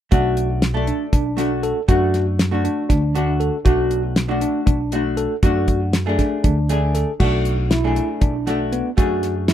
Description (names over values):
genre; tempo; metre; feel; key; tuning
progressive instrumental, band music in an uneven meter; 237 BPM (eighths); 7/8; straight; B dorian; A4 = 440 Hz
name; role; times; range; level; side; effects
hollow-body jazz guitar; accompaniment; 0.1-9.5 s; A3 to A4; -23 LUFS; left 1 dB; double-tracked left and right
tine electric piano; arpeggios; 0.1-9.5 s; B3 to A4; -24 LUFS; right 1 dB; medium stereo tremolo, ping-pong delay
upright bass; bass; 0.1-9.5 s; B1 to F#2; -22 LUFS; equal; none
damped 70s drum kit; drums; 0.1-9.5 s; crash cymbal, hi-hat, kick drum, snare drum; -19 LUFS; equal; none
room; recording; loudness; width
studio reverb; rough home demo mix; -17 LUFS; side -10 dB against mid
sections
0.1-7.2 A section; 7.2-9.5 B section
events
none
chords
0.1 Bm7